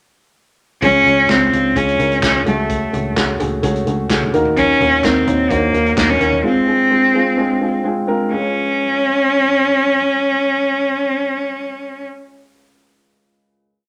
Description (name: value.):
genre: piano-driven pop.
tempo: 128 BPM.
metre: 4/4.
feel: straight.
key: Db major.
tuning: A4 = 440 Hz.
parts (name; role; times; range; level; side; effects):
rich cello; melody; 0.8-12.0 s; A3 to Db4; -17 LUFS; equal; none.
warm upright piano; accompaniment; 0.8-13.9 s; Db2 to Db5; -22 LUFS; equal; none.
vintage muted fingered electric bass; bass; 0.8-6.4 s; Db2 to Eb2; -26 LUFS; equal; none.
natural country drum kit; drums; 0.8-6.4 s; handclaps, hi-hat, kick drum, snare drum, toms; -24 LUFS; equal; none.
room: moderate studio reverb, RT60 0.9 s.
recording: none.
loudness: -16 LUFS.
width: mono.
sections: 0.8-8.3 verse; 8.3-12.1 final chord.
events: none.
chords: 0.8 Db; 2.5 Gbmadd9/Db; 4.3 Ebm; 6.4 Fm; 8.3 Db.